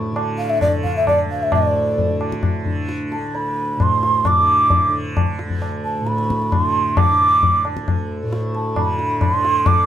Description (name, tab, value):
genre	indian classical, Hindustani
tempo	133 BPM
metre	3/4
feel	straight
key	unclear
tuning	A4 = 440 Hz
part	tanpura	drone	0.0-9.9 s	D2 to D3	-24 LUFS	right 1 dB	none
part	tabla	percussion	0.2-9.8 s	none	-21 LUFS	left 2 dB	none
part	breathy mellow bansuri	melody	0.4-9.9 s	D5 to D6	-17 LUFS	right 2 dB	none
room	moderate studio reverb, RT60 0.8 s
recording	band playing live in one room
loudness	-16 LUFS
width	side -10 dB against mid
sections	0.0-1.5 A section; 1.5-9.9 B section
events	none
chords	none